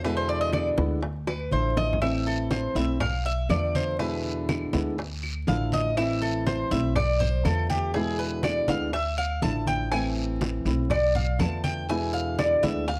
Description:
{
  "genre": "latin, Cuban son and guajira",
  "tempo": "122 BPM",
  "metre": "4/4",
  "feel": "straight",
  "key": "A harmonic minor",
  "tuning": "A4 = 445 Hz",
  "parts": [
    { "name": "flamenco guitar", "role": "accompaniment", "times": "0.0-12.9 s", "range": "B2 to F4", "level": "-32 LUFS", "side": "equal", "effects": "none" },
    { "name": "Cuban tres", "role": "arpeggios", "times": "0.0-13.0 s", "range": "G4 to A5", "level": "-30 LUFS", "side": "equal", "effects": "none" },
    { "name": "upright bass", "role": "bass", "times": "0.0-13.0 s", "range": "A1 to E2", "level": "-32 LUFS", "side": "equal", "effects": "none" },
    { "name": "bongos", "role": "percussion", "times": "0.0-13.0 s", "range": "none", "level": "-35 LUFS", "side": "equal", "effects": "none" },
    { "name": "congas", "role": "percussion", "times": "0.0-13.0 s", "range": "none", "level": "-34 LUFS", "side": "equal", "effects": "none" },
    { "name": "claves", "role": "percussion", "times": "0.5-12.6 s", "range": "none", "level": "-43 LUFS", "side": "equal", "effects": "none" },
    { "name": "guiro", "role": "percussion", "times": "2.0-13.0 s", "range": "none", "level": "-44 LUFS", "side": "equal", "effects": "none" }
  ],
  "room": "moderate spring reverb, RT60 1.3 s, small room ambience",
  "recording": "vinyl crackle",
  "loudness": "-26 LUFS",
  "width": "mono",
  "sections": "0.0-13.0 A section",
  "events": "Cuban tres solo 0.0-13.0; drum fill 1.3-2.0",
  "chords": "0.0 E7; 1.0 Dmadd9; 2.0 Am; 3.0 Bm7b5; 4.0 E7; 5.0 Dmadd9; 6.0 Am; 7.0 Bm7b5; 7.9 E7; 8.9 Dmadd9; 9.9 Am; 10.9 Bm7b5; 11.9 E7",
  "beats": "| 0.05 0.54 1.03 1.53 | 2.02 2.52 3.01 3.50 | 4.00 4.49 4.98 5.48 | 5.97 6.46 6.96 7.45 | 7.95 8.44 8.93 9.43 | 9.92 10.41 10.91 11.40 | 11.89 12.39 12.88"
}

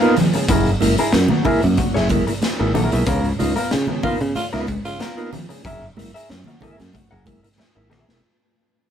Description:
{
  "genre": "funk",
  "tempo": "93 BPM",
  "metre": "4/4",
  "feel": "straight",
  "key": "unclear",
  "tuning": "A4 = 440 Hz",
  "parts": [
    { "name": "semi-hollow electric guitar", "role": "accompaniment", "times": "0.0-8.1 s", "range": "Cb4 to Gb5", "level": "-24 LUFS", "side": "left 1 dB", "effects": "none" },
    { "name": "tonewheel organ", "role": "stabs", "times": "0.0-8.2 s", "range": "Db3 to F4", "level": "-22 LUFS", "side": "right 2 dB", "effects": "slow rotary speaker" },
    { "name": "raw garage drum kit", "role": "drums", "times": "0.0-8.2 s", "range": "hi-hat, kick drum, snare drum", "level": "-24 LUFS", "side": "equal", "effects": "none" },
    { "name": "mellow electric guitar", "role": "riff", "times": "0.2-8.0 s", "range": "F3 to Db4", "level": "-26 LUFS", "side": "right 3 dB", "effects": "spring reverb" },
    { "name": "congas", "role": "percussion", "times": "0.2-8.1 s", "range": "none", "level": "-26 LUFS", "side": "equal", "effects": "none" },
    { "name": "modern bright fingered electric bass", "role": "bass", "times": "0.5-8.2 s", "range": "Fb1 to Db3", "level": "-21 LUFS", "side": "equal", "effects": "none" },
    { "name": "growling tenor saxophone", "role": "second line", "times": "4.0-5.1 s", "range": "F4", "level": "-29 LUFS", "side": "equal", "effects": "none" }
  ],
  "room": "moderate small room reverb, RT60 0.5 s",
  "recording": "rough rehearsal-room recording",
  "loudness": "-16 LUFS",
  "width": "side -9 dB against mid",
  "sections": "0.0-8.2 A section",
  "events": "fade-out 0.0-8.2; drum fill 7.6-8.2",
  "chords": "0.5 Gb9; 3.1 Db13; 5.6 Gb9",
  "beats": "| 0.49 1.13 1.77 2.42 | 3.06 3.71 4.35 5.00 | 5.64 6.29 6.93 7.58"
}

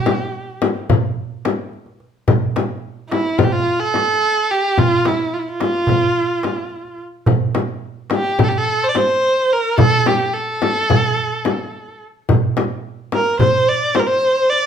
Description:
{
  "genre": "Turkish makam ensemble",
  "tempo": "216 BPM (eighths)",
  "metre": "9/8",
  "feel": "straight",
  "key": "F makam rast",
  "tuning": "A4 = 439 Hz",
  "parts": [
    { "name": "rich kamancheh", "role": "melody", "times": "0.0-14.7 s", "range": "E4 to D5", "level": "-17 LUFS", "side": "right 1 dB", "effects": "none" },
    { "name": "darbuka", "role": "percussion", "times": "0.1-14.6 s", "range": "none", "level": "-21 LUFS", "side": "right 4 dB", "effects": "none" },
    { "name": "frame drum", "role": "percussion", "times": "0.1-14.1 s", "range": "none", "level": "-19 LUFS", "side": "left 5 dB", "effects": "none" }
  ],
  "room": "moderate large studio reverb, RT60 0.9 s",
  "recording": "band playing live in one room",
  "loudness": "-15 LUFS",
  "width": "side -8 dB against mid",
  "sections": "0.0-2.3 A section; 2.3-14.7 B section",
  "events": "none",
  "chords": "none",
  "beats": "0.07 0.34 0.62 0.90 1.18 1.45 1.73 2.01 | 2.29 2.56 2.84 3.12 3.40 3.67 3.95 4.23 4.51 | 4.79 5.06 5.34 5.62 5.90 6.18 6.46 6.73 7.01 | 7.29 7.57 7.84 8.12 8.40 8.68 8.96 9.24 9.51 | 9.79 10.07 10.35 10.63 10.90 11.18 11.46 11.74 12.02 | 12.29 12.57 12.85 13.13 13.41 13.69 13.96 14.24 14.52"
}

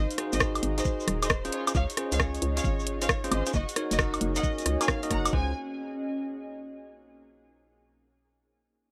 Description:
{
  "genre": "UK garage, two-step garage",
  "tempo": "134 BPM",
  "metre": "4/4",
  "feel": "swing 67% on 16ths",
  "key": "Db major",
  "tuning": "A4 = 436 Hz",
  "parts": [
    { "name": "warm studio violin section", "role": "melody", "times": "0.0-5.5 s", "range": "F4 to Bb5", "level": "-38 LUFS", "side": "equal", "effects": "dub echo" },
    { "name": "soft string machine", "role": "sustained chords", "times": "0.1-5.5 s", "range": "Bb3 to Bb4", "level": "-48 LUFS", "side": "equal", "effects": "none" },
    { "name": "hollow knocking FM bass", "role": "bass", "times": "0.0-5.5 s", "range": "Eb1 to Db2", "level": "-33 LUFS", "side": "equal", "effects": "tube saturation" },
    { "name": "warbly tape-like pad", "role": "texture", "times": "0.0-7.1 s", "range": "Db4 to Bb5", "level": "-41 LUFS", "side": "equal", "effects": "chorus, built-in reverb, sidechain pumping" },
    { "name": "punchy analog drum machine", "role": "drums", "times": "0.1-5.3 s", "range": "hi-hat, rim click, woodblock", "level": "-31 LUFS", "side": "equal", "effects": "none" },
    { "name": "maracas", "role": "percussion", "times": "0.1-5.3 s", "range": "none", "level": "-42 LUFS", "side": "equal", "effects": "none" },
    { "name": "bell-like tine electric piano", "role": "stabs", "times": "0.2-5.5 s", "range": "Db4 to Eb5", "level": "-35 LUFS", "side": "equal", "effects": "dub echo" },
    { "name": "electronic kick drum", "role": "drums", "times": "0.4-5.4 s", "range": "none", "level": "-32 LUFS", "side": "equal", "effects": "none" }
  ],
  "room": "light reverb",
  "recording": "faint mains hum",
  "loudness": "-28 LUFS",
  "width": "mono",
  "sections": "0.0-5.3 A section; 5.3-7.1 B section",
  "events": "drop 0.0-5.3",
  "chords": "0.0 Ebmadd9; 1.5 Dbmaj7; 3.5 Gb6; 5.3 Dbmaj7",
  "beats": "0.41 0.85 1.30 | 1.75 2.20 2.64 3.09 | 3.54 3.99 4.43 4.88 | 5.33 5.78 6.23 6.67"
}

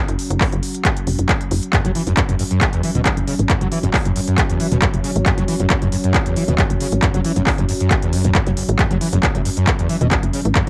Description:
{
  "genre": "driving peak-time techno",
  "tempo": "136 BPM",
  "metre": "4/4",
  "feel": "straight",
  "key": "unclear",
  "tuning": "A4 = 441 Hz",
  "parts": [
    { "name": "analog drone", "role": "drone", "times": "0.1-10.7 s", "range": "F#3 to C#4", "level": "-29 LUFS", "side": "equal", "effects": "chorus, sidechain pumping, cassette tape" },
    { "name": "tight sequencer bass", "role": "bass", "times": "0.1-10.7 s", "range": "E1 to A1", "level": "-22 LUFS", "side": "equal", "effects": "sidechain pumping" },
    { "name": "techno drum kit", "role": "drums", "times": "0.1-10.7 s", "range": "handclaps, hi-hat", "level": "-24 LUFS", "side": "equal", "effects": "cassette tape" },
    { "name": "electronic kick drum", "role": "drums", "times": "0.4-10.6 s", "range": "none", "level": "-22 LUFS", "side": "equal", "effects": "cassette tape" },
    { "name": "screaming distorted acid line", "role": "riff", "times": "1.7-10.7 s", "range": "F#1 to F#3", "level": "-23 LUFS", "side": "equal", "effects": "distortion, ensemble chorus, sidechain pumping, cassette tape, tape echo" }
  ],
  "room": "light reverb",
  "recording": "home recording on cassette",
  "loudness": "-18 LUFS",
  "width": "mono",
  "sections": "0.0-10.7 A section",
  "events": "none",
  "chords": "0.0 F#5",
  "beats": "0.41 0.85 1.29 | 1.73 2.17 2.61 3.06 | 3.50 3.94 4.38 4.82 | 5.26 5.70 6.14 6.58 | 7.03 7.47 7.91 8.35 | 8.79 9.23 9.67 10.11 | 10.55"
}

